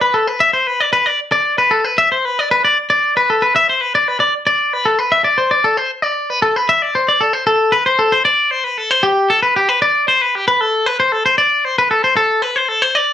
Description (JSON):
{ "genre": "rock", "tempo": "77 BPM (dotted quarters)", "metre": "6/8", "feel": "straight", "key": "unclear", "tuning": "A4 = 440 Hz", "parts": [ { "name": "twangy electric guitar", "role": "solo", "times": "0.0-13.1 s", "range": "G4 to E5", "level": "-12 LUFS", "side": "left 1 dB", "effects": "slapback echo" } ], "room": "moderate small room reverb, RT60 0.5 s", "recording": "none", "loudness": "-12 LUFS", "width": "side -10 dB against mid", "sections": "0.0-7.5 A section; 7.5-13.1 B section", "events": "none", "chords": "none" }